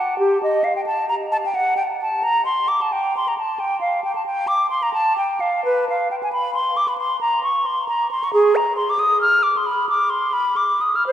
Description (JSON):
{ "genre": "classical, baroque-style fantasia for unaccompanied flute", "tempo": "89 BPM (dotted quarters)", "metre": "12/8", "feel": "rubato", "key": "G minor, C minor from 5.6 s", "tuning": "A4 = 440 Hz", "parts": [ { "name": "hollow concert flute", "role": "solo", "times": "0.0-11.1 s", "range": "G4 to F6", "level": "-17 LUFS", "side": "equal", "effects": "none" } ], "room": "wet cathedral reverb, RT60 6.1 s", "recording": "heard from further back in the room, nothing above 10.3 kHz", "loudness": "-17 LUFS", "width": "side -10 dB against mid", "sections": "0.0-11.1 A section", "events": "none", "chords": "none", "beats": "| 0.19 0.87 1.55 2.24 | 2.91 3.59 4.26 4.93 | 5.65 6.33 6.99 7.65 | 8.32 8.98 9.65 10.33 | 11.05" }